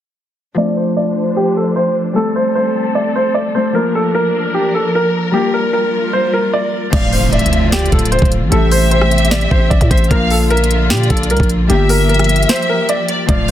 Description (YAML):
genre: hip hop, trap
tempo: 151 BPM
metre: 4/4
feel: half-time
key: D minor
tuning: A4 = 439 Hz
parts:
  - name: Celtic harp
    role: accompaniment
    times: 0.5-13.5 s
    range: F3 to Bb4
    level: -20 LUFS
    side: left 3 dB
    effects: low-pass filter
  - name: clear concert grand piano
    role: melody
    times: 0.6-13.5 s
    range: G4 to D5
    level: -17 LUFS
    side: right 1 dB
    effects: low-pass filter, digital delay
  - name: dark symphonic string section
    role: sustained chords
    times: 0.6-13.5 s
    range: C3 to C5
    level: -23 LUFS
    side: equal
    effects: low-pass filter
  - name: warm studio violin section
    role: second line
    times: 6.9-13.5 s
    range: D5 to F5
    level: -20 LUFS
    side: left 1 dB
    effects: digital delay
  - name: growling 808-style bass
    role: bass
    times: 6.9-13.5 s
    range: D1 to Bb2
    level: -15 LUFS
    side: equal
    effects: none
  - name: trap drum kit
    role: drums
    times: 6.9-13.5 s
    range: crash cymbal, hi-hat, kick drum, rim click, snare drum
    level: -16 LUFS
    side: equal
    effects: none
  - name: impact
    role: sound effects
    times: 6.9-8.5 s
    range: none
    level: -22 LUFS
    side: equal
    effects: none
room: small room ambience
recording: dense, heavily limited modern master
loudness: -12 LUFS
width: side -11 dB against mid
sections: 0.6-6.9 A section; 6.9-13.5 B section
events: filter sweep 0.6-6.9; impact 6.9-8.5; break 12.5-13.3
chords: 0.6 Dm7; 2.2 Am7; 3.8 Bb; 5.3 Gm7; 6.9 Dm7; 8.5 Am7; 10.1 Bb; 11.7 Gm7